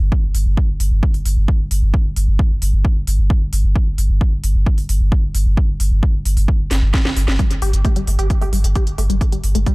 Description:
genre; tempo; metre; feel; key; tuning
driving peak-time techno; 132 BPM; 4/4; straight; unclear; A4 = 440 Hz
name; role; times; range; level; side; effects
warm sub bass; bass; 0.0-9.7 s; G1; -16 LUFS; equal; tube saturation, sidechain pumping, low-pass filter
electronic kick drum; drums; 0.1-9.7 s; none; -17 LUFS; equal; overdrive
techno drum kit; drums; 0.3-9.7 s; hi-hat, snare drum; -25 LUFS; right 1 dB; overdrive, sidechain pumping on hats, tape echo
tight sequenced synth; riff; 7.4-9.7 s; G3 to G4; -25 LUFS; left 2 dB; chorus, tube saturation, sidechain pumping, tape echo
room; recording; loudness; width
digital ambience; echo-heavy mix; -14 LUFS; side -24 dB against mid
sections
0.0-9.7 A section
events
drum fill 6.7-7.4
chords
none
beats
| 0.12 0.57 1.03 1.48 | 1.94 2.39 2.85 3.30 | 3.76 4.21 4.67 5.12 | 5.57 6.03 6.48 6.94 | 7.39 7.85 8.30 8.76 | 9.21 9.66

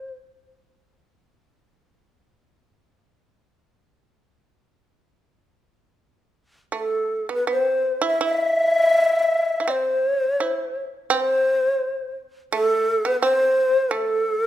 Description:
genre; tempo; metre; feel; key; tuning
japanese traditional, Japanese chamber music; 74-88 BPM; 4/4; rubato; unclear; A4 = 440 Hz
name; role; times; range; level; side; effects
breathy bright long shakuhachi; melody; 0.0-0.1, 6.8-14.5 s; A4 to E5; -19 LUFS; left 1 dB; none
shamisen; second line; 0.0-0.1, 6.7-14.5 s; A3 to E4; -26 LUFS; right 6 dB; none
room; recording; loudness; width
moderate recital hall reverb, RT60 1.5 s; none; -19 LUFS; side -12 dB against mid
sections
0.0-6.7 A section; 6.7-14.5 B section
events
none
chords
none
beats
0.10 | 0.80 1.50 2.21 2.94 | 3.67 4.41 5.15 5.94 | 6.73 7.49 8.23 8.95 | 9.68 10.41 11.13 11.83 | 12.54 13.23 13.93

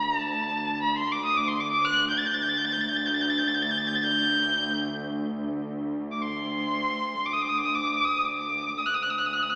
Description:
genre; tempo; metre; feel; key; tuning
turkish; free time; none; none; D makam hicaz; A4 = 440 Hz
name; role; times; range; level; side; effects
clear violin; melody; 0.0-9.6 s; A5 to A6; -24 LUFS; equal; none
warm studio cello section; drone; 0.0-9.6 s; D2; -31 LUFS; equal; none
room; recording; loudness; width
wet concert hall reverb, RT60 2.4 s; heard from further back in the room, AM radio sound; -24 LUFS; side -35 dB against mid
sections
0.0-9.6 A section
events
none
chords
none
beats
free time

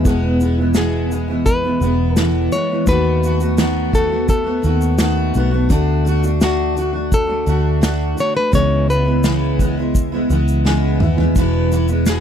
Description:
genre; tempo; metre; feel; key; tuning
acoustic pop; 85 BPM; 4/4; straight; E major; A4 = 443 Hz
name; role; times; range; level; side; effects
felt-muted upright piano; accompaniment; 0.0-11.4 s; A3 to G#5; -29 LUFS; left 7 dB; none
fingerpicked steel-string acoustic guitar; accompaniment; 0.0-12.2 s; E2 to F#4; -19 LUFS; right 1 dB; double-tracked left and right
vintage muted fingered electric bass; bass; 0.0-12.2 s; E1 to D#2; -18 LUFS; equal; none
unplugged drum kit; drums; 0.1-12.2 s; kick drum, shaker, snare drum, toms; -18 LUFS; equal; none
nylon-string guitar; melody; 0.8-12.2 s; F#4 to C#5; -21 LUFS; left 2 dB; none
room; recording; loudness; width
little or no reverb; dry, close 1970s-style studio recording; -14 LUFS; side -8 dB against mid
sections
0.0-11.4 A section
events
felt piano fill 10.3-11.4; drum fill 10.7-11.4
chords
0.1 E; 2.9 B7/D#; 5.7 D; 8.5 C#m7; 11.4 E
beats
| 0.05 0.76 1.46 2.17 | 2.88 3.58 4.29 5.00 | 5.70 6.41 7.12 7.83 | 8.53 9.24 9.95 10.66 | 11.36 12.07

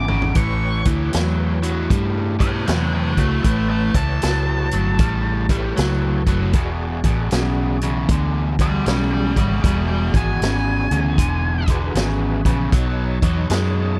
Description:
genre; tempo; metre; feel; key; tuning
blues rock power trio and southern rock; 78 BPM; 4/4; swing 65% on 8ths; unclear; A4 = 441 Hz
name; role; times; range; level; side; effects
octave-fuzz lead guitar; melody; 0.0-11.7 s; D5 to D6; -28 LUFS; equal; distortion
overdriven electric guitar; riff; 0.0-13.9 s; E2 to G#3; -26 LUFS; equal; none
vintage muted fingered electric bass; bass; 0.0-14.0 s; E1 to G2; -24 LUFS; equal; none
vintage drum kit; drums; 0.1-13.7 s; hi-hat, kick drum, snare drum, toms; -23 LUFS; equal; none
overdriven tonewheel organ; sustained chords; 0.3-14.0 s; D#4 to B5; -35 LUFS; equal; chorus vibrato, fast rotary speaker
room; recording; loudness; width
little or no reverb; dry, close 1970s-style studio recording; -19 LUFS; mono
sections
0.0-14.0 A section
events
drum fill 0.0-0.4; tonewheel organ fill 5.0-6.5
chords
0.4 A7; 6.5 E7; 12.7 B7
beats
| 0.36 1.14 1.91 2.68 | 3.45 4.22 5.00 5.77 | 6.54 7.32 8.09 8.86 | 9.63 10.40 11.18 11.95 | 12.72 13.49

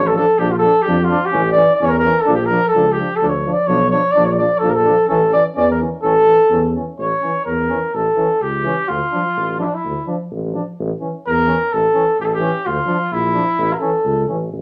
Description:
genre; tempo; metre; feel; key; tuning
balkan folk, Balkan brass band; 127 BPM; 2/4; straight; A phrygian dominant; A4 = 440 Hz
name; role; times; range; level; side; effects
warm flugelhorn; melody; 0.0-14.3 s; D4 to D5; -18 LUFS; equal; none
mellow tuba; bass; 0.0-14.6 s; A1 to F2; -24 LUFS; equal; none
dark euphonium; accompaniment; 0.1-14.4 s; E3 to F3; -27 LUFS; equal; none
warm trombone; accompaniment; 0.2-14.4 s; C#4 to D4; -27 LUFS; equal; none
room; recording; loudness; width
wet studio reverb, RT60 0.5 s; none; -17 LUFS; mono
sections
0.0-7.0 A section; 7.0-14.6 B section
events
flugelhorn solo 7.0-14.6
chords
0.4 Bb; 1.3 A; 2.3 Bb; 3.2 Dm; 4.2 Bb; 5.1 A; 8.9 Dm; 10.8 A; 12.7 Dm; 13.6 A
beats
| 0.39 0.86 | 1.33 1.80 | 2.27 2.74 | 3.21 3.68 | 4.15 4.62 | 5.09 5.57 | 6.04 6.51 | 6.98 7.46 | 7.93 8.40 | 8.88 9.35 | 9.82 10.30 | 10.77 11.24 | 11.71 12.19 | 12.65 13.12 | 13.60 14.06 | 14.53

